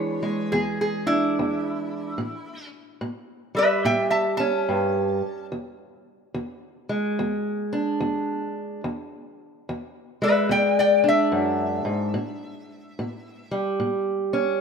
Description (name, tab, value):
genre	acoustic country blues, solo or duo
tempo	72 BPM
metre	4/4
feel	swing 64% on 8ths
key	E mixolydian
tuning	A4 = 441 Hz
part	lap resonator guitar	melody	0.0-13.5 s	E4 to A5	-23 LUFS	left 2 dB	none
part	fingerpicked steel-string acoustic guitar	accompaniment	0.0-14.6 s	E2 to G#4	-25 LUFS	right 2 dB	none
room	moderate lush hall reverb, RT60 2.3 s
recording	rough home demo mix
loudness	-22 LUFS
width	side -6 dB against mid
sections	0.0-14.6 A section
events	none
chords	0.0 E7; 2.2 A7; 5.5 E7; 12.2 A7(no3)